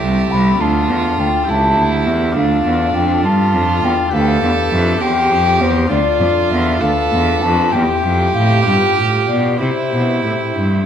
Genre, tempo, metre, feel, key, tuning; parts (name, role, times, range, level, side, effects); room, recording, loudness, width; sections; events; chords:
classical, baroque-style sonata movement with continuo; 63-68 BPM (dotted quarters); 6/8; rubato; C major from 4.1 s; A4 = 440 Hz
mellow hollow baroque flute; melody; 0.0-10.5 s; C5 to B5; -19 LUFS; left 5 dB
warm violin; second line; 0.0-10.9 s; D4 to A4; -19 LUFS; right 6 dB
chamber organ, sparkling flutes; accompaniment; 0.0-10.9 s; C2 to C5; -20 LUFS; left 1 dB
rich cello; bass; 0.0-10.9 s; C2 to C3; -17 LUFS; right 1 dB
moderate recital hall reverb, RT60 1.7 s; lossy compression artefacts; -13 LUFS; side -8 dB against mid
0.0-10.9 A section
0.0 Am; 0.6 Dm; 1.5 A7/C#; 2.4 Dm; 4.1 G7/D; 5.0 C/E; 5.9 Dm; 6.8 Bdim/D; 7.7 C/E; 8.7 G7; 9.6 C